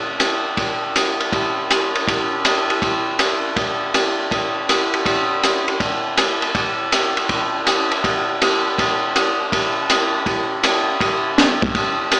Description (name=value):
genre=jazz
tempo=161 BPM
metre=4/4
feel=swing 66% on 8ths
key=none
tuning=none
part: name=compact cocktail drum kit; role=drums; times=0.2-12.2 s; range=hi-hat, kick drum, ride cymbal, snare drum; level=-16 LUFS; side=equal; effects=none
room=light reverb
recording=small speaker sound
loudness=-16 LUFS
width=side -22 dB against mid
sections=0.0-6.5 A section; 6.5-12.2 B section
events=none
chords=none